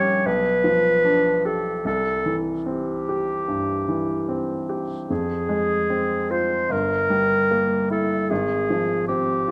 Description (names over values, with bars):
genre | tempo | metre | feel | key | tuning
classical, romantic duo for clarinet and grand piano | 74 BPM | 4/4 | rubato | F minor | A4 = 437 Hz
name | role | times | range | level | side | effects
clear clarinet | melody | 0.0-9.5 s | G4 to Db5 | -24 LUFS | equal | none
clear baby grand piano | accompaniment | 0.0-9.5 s | G1 to G4 | -27 LUFS | equal | none
room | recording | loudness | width
moderate recital hall reverb, RT60 1.4 s | close, detailed microphones | -22 LUFS | mono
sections
0.0-9.5 A section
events
none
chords
0.3 G7/B; 1.9 C; 5.1 Fm; 6.7 Edim/G; 8.3 Fm/Ab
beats
0.26 1.04 | 1.85 2.67 3.48 4.29 | 5.10 5.90 6.72 7.51 | 8.30 9.08